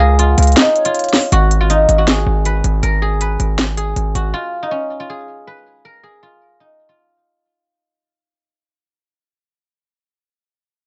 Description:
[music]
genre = hip hop, trap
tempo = 159 BPM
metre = 4/4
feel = half-time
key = G# dorian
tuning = A4 = 440 Hz
[part]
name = guzheng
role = melody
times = 0.0-9.4 s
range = C#4 to B4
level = -20 LUFS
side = equal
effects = low-pass filter
[part]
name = hollow clarinet-like synth lead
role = second line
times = 0.0-1.3 s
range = C#5 to E#5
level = -24 LUFS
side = equal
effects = chorus, digital delay
[part]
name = distorted 808-style bass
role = bass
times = 0.0-4.3 s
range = G#1 to C#2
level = -17 LUFS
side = equal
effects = distortion
[part]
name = trap drum kit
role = drums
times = 0.2-4.2 s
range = hi-hat, snare drum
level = -18 LUFS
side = equal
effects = overdrive
[sound]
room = little or no reverb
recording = nothing above 7.9 kHz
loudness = -15 LUFS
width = mono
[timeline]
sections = 0.0-1.3 A section; 1.3-7.4 B section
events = break 0.6-1.3; fade-out 1.3-7.4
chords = 0.0 C#; 1.3 G#m; 4.3 N.C.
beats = 0.19 0.57 0.94 | 1.32 1.70 2.08 2.45 | 2.83 3.21 3.58 3.96 | 4.34 4.72 5.09 5.47 | 5.85 6.23 6.60 6.98

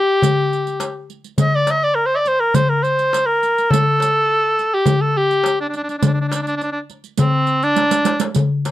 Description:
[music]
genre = Arabic maqam ensemble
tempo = 103 BPM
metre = 4/4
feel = straight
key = D maqam bayati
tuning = A4 = 439 Hz
[part]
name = clear cor anglais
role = melody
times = 0.0-8.2 s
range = C4 to Eb5+48c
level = -16 LUFS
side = equal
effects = none
[part]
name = darbuka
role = percussion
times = 0.2-8.7 s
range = none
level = -19 LUFS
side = left 3 dB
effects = none
[part]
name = riq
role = percussion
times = 0.2-8.7 s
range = none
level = -24 LUFS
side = right 11 dB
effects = none
[sound]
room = light reverb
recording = dry, close 1970s-style studio recording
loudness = -15 LUFS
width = side -14 dB against mid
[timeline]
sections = 0.0-8.4 A section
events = drum fill 7.8-8.4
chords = none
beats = 0.22 0.80 | 1.38 1.96 2.54 3.12 | 3.71 4.29 4.87 5.45 | 6.03 6.61 7.19 7.77 | 8.36

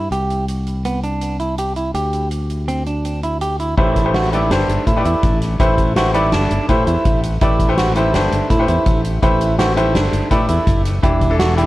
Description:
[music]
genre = progressive instrumental, band music in an uneven meter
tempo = 165 BPM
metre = 5/4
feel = straight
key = unclear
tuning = A4 = 441 Hz
[part]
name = clean electric guitar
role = arpeggios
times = 0.0-11.7 s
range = B3 to G4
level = -20 LUFS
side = right 2 dB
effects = tape echo
[part]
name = modern bright fingered electric bass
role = bass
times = 0.0-11.7 s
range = E1 to A2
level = -19 LUFS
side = equal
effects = none
[part]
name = soft-mallet drum kit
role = drums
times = 0.1-11.7 s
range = crash cymbal, hi-hat, kick drum, snare drum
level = -20 LUFS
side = equal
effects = none
[part]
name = bright grand piano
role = accompaniment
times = 3.8-11.7 s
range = E3 to D5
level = -20 LUFS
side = left 2 dB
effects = none
[sound]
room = little or no reverb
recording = worn, warbling old tape, cassette tape, warbly pitch drift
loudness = -14 LUFS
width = side -17 dB against mid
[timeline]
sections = 0.0-3.8 A section; 3.8-11.7 B section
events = none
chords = 0.1 C; 1.9 Dsus4; 3.8 Am9; 11.0 Em7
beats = | 0.11 0.48 0.84 1.21 1.58 | 1.95 2.31 2.68 3.04 3.41 | 3.78 4.14 4.51 4.87 5.23 | 5.60 5.96 6.32 6.69 7.05 | 7.41 7.78 8.14 8.50 8.86 | 9.22 9.59 9.95 10.31 10.67 | 11.03 11.39

